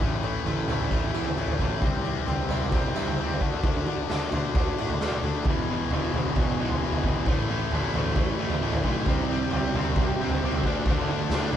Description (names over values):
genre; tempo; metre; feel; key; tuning
quiet-loud alternative rock; 133 BPM; 4/4; straight; unclear; A4 = 440 Hz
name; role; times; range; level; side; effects
picked plugged-in swing-style acoustic guitar; arpeggios; 0.0-5.5 s; A2 to F#4; -35 LUFS; right 8 dB; none
distorted electric guitar; riff; 0.0-11.6 s; E2 to D4; -30 LUFS; left 7 dB; overdrive
fuzz picked electric bass; bass; 0.0-11.6 s; E1 to A2; -32 LUFS; equal; overdrive
raw garage drum kit; drums; 0.0-11.6 s; kick drum, snare drum, toms; -26 LUFS; equal; none
sludgy distorted guitar; riff; 5.5-11.6 s; E2 to D4; -31 LUFS; right 7 dB; overdrive
room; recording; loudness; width
light reverb; band playing live in one room; -23 LUFS; side -10 dB against mid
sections
0.0-11.6 A section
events
none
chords
0.0 A; 1.8 C; 3.4 D; 5.5 E5; 7.3 A5; 9.1 C5; 10.6 D5